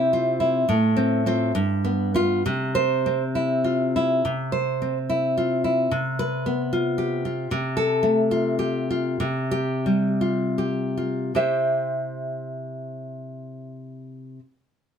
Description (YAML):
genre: romantic piece for solo classical guitar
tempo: 50-76 BPM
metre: 2/4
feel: rubato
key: C major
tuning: A4 = 440 Hz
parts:
  - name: nylon-string guitar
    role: solo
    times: 0.0-14.4 s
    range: G2 to E5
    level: -21 LUFS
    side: equal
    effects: none
room: moderate small room reverb, RT60 0.5 s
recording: none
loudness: -21 LUFS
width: side -7 dB against mid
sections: 0.0-4.2 A section; 4.2-11.4 B section; 11.4-15.0 C section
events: slowing down 6.7-11.4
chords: 0.0 C; 0.7 F/A; 1.5 G7; 2.4 C; 5.9 G7/C; 7.5 F/C; 9.2 Csus4; 11.4 C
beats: | 0.67 1.53 | 2.44 3.34 | 4.24 5.08 | 5.91 6.70 | 7.50 8.31 | 9.22 10.23 | 11.36 12.46 | 13.56